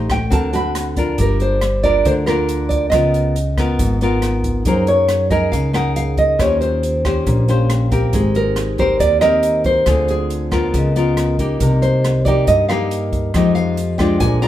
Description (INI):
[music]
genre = bossa nova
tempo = 138 BPM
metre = 4/4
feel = straight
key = unclear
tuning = A4 = 440 Hz
[part]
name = nylon-string guitar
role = melody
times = 0.0-14.5 s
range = Ab4 to Cb6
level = -18 LUFS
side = right 1 dB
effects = none
[part]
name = nylon-string guitar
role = accompaniment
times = 0.0-14.5 s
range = G2 to C5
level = -20 LUFS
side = left 2 dB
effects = none
[part]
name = upright bass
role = bass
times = 0.0-14.5 s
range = G1 to G2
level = -19 LUFS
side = equal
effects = none
[part]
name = open jazz drum kit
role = drums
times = 0.1-14.5 s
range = hi-hat, kick drum, rim click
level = -24 LUFS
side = equal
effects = none
[part]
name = vibraphone with medium hard mallets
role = accompaniment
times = 4.6-14.5 s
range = Db4 to Bb5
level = -26 LUFS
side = equal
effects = none
[sound]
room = moderate studio reverb, RT60 0.8 s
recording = heard from further back in the room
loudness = -14 LUFS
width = side -12 dB against mid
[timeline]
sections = 0.0-14.5 A section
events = vibraphone fill 7.3-8.1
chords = 0.3 D7b13; 1.2 Gm7; 2.9 Db13; 4.7 Gb69; 6.4 Eb13; 8.1 Abmaj9; 9.9 Dm7b5; 10.7 Db13; 11.6 Cm7; 13.3 Fm9